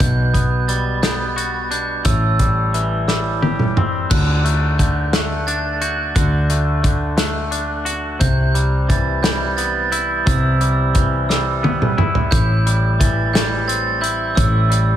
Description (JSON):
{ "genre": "post-rock", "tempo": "58 BPM (dotted quarters)", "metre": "6/8", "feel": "straight", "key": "unclear", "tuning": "A4 = 440 Hz", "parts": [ { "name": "glockenspiel with soft plastic mallets", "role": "arpeggios", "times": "0.0-15.0 s", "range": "E6 to A6", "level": "-23 LUFS", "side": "right 6 dB", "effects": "analog delay, slapback echo" }, { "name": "twangy electric guitar", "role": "arpeggios", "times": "0.0-15.0 s", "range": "A2 to G4", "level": "-22 LUFS", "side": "left 1 dB", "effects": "analog delay, slapback echo" }, { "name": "hollow-body short-scale picked electric bass", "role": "bass", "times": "0.0-15.0 s", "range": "A1 to D2", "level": "-20 LUFS", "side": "equal", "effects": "none" }, { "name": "loose indie drum kit", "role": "drums", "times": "0.0-14.9 s", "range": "crash cymbal, hi-hat, kick drum, snare drum, toms", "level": "-19 LUFS", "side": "equal", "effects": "none" } ], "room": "moderate lush hall reverb, RT60 2.6 s", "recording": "big arena sound", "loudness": "-15 LUFS", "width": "side -11 dB against mid", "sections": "0.0-4.1 A section; 4.1-15.0 B section", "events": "drum fill 3.1-4.1, 11.3-12.3", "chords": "0.0 Gmaj7/B; 2.1 Am7; 4.1 D; 8.2 Cmaj7; 12.3 Am7", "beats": "| 0.00 1.03 | 2.05 3.08 | 4.11 5.13 | 6.16 7.19 | 8.22 9.24 | 10.27 11.30 | 12.33 13.35 | 14.38" }